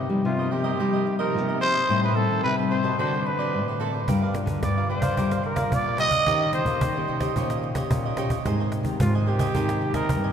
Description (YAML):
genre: samba and choro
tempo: 110 BPM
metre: 4/4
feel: straight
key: Eb major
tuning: A4 = 440 Hz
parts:
  - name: nylon-string guitar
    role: accompaniment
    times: 0.0-10.3 s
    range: G2 to C5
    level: -30 LUFS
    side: left 5 dB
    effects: none
  - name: nylon-string guitar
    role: bass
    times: 0.0-10.3 s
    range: G2 to G3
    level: -26 LUFS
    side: equal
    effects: none
  - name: growling trumpet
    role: melody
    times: 0.3-10.3 s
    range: F4 to Eb5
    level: -26 LUFS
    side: right 1 dB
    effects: none
  - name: cavaquinho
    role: accompaniment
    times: 0.4-10.3 s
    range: Eb4 to A5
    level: -32 LUFS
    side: right 4 dB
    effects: none
  - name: cajon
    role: drums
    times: 4.1-10.2 s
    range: none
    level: -28 LUFS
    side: equal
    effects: none
room: wet cathedral reverb, RT60 5.0 s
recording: recorded in a church or concert hall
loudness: -21 LUFS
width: side -8 dB against mid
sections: 0.0-10.3 A section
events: none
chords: 0.0 Cm7; 1.9 Am7b5; 3.0 D7b13; 4.1 Gm7; 6.3 Eb6; 8.5 Abmaj9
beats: 0.25 0.80 1.35 | 1.89 2.44 2.99 3.54 | 4.08 4.63 5.18 5.72 | 6.27 6.82 7.36 7.91 | 8.46 9.00 9.55 10.10